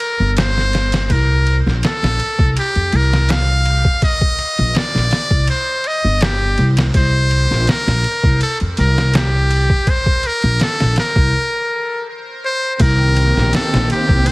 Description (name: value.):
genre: trip hop.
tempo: 82 BPM.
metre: 4/4.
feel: straight.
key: C dorian.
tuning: A4 = 442 Hz.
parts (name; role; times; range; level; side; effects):
trumpet with metal mute; melody; 0.0-14.3 s; G4 to F5; -18 LUFS; equal; tape echo.
trip hop sampler-style drum kit; drums; 0.0-14.3 s; kick drum, ride cymbal, snare drum; -18 LUFS; equal; small room ambience.
upright bass; bass; 0.2-14.2 s; G1 to F2; -16 LUFS; equal; none.
rich studio string section; sustained chords; 12.8-14.3 s; Eb3 to G4; -21 LUFS; equal; none.
room: small room ambience.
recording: heavily compressed radio sound, vinyl crackle.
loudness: -13 LUFS.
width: side -23 dB against mid.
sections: 0.0-12.8 A section; 12.8-14.3 B section.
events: break 11.3-12.8.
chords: 0.0 C5; 6.9 N.C.; 12.8 Cm7.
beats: 0.36 | 1.09 1.83 2.56 3.29 | 4.02 4.75 5.48 6.22 | 6.95 7.68 8.41 9.14 | 9.88 10.61 11.34 12.07 | 12.80 13.53 14.27.